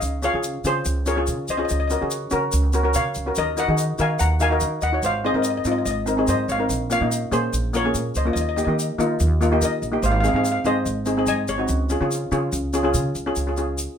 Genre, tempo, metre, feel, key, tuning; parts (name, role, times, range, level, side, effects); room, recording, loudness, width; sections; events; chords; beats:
calypso; 144 BPM; 4/4; straight; Db major; A4 = 440 Hz
steel pan; melody; 0.0-12.9 s; Ab4 to Bb5; -25 LUFS; left 2 dB
steel pan; accompaniment; 0.0-13.8 s; Bb3 to Db5; -23 LUFS; equal
upright bass; bass; 0.0-13.9 s; Ab1 to Eb3; -24 LUFS; right 1 dB
tube shaker; percussion; 0.0-13.9 s; -30 LUFS; left 2 dB
moderate studio reverb, RT60 0.5 s; minimal, uncompressed stereo recording; -19 LUFS; side -8 dB against mid
0.0-13.4 A section
0.0 Db6; 1.7 Gb/Db; 3.4 Ebm; 5.0 Ab6; 6.7 Bbmadd9; 8.4 Eb; 10.0 Ab; 11.7 Db
| 0.02 0.44 0.85 1.27 | 1.69 2.11 2.52 2.94 | 3.36 3.78 4.19 4.61 | 5.03 5.44 5.86 6.28 | 6.69 7.11 7.53 7.95 | 8.36 8.78 9.20 9.61 | 10.03 10.45 10.87 11.28 | 11.70 12.12 12.54 12.95 | 13.37 13.79